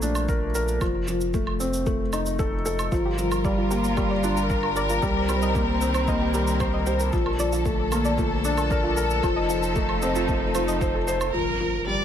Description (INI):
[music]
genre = piano and strings electronica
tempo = 114 BPM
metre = 4/4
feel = straight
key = unclear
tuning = A4 = 440 Hz
[part]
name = felt-muted upright piano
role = riff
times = 0.0-12.0 s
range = F3 to C5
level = -26 LUFS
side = left 2 dB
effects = ping-pong delay
[part]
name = warm sub bass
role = bass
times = 0.0-12.0 s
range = F1 to C2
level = -29 LUFS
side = equal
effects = tube saturation, sidechain pumping
[part]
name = shaker and woodblock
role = drums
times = 0.0-11.3 s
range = none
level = -34 LUFS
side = right 4 dB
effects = low-pass filter on perc, low-pass filter on room
[part]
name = electronic kick drum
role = drums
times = 0.3-10.9 s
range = none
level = -28 LUFS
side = equal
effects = none
[part]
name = muted studio string section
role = sustained chords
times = 2.9-12.0 s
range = D3 to Bb4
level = -28 LUFS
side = left 2 dB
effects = none
[part]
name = soft round pluck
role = arpeggios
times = 2.9-11.3 s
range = F4 to Eb5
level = -31 LUFS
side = right 3 dB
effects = chorus, sidechain pumping, ping-pong delay
[part]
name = rich chamber violin section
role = melody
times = 11.3-12.0 s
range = Bb4 to D5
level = -26 LUFS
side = right 2 dB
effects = none
[part]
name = impact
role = sound effects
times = 11.3-12.0 s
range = none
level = -34 LUFS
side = equal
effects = none
[sound]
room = light reverb, small room ambience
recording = none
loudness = -21 LUFS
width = side -9 dB against mid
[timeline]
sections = 0.0-11.3 A section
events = impact 11.3-12.0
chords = 0.0 Bbmaj7; 0.8 F7; 2.9 Gm7; 5.0 Cm7; 7.1 Bbmaj7; 9.2 F7; 11.3 Gm7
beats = 0.29 | 0.81 1.34 1.87 2.39 | 2.92 3.45 3.97 4.50 | 5.03 5.55 6.08 6.60 | 7.13 7.66 8.18 8.71 | 9.24 9.76 10.29 10.81 | 11.34 11.87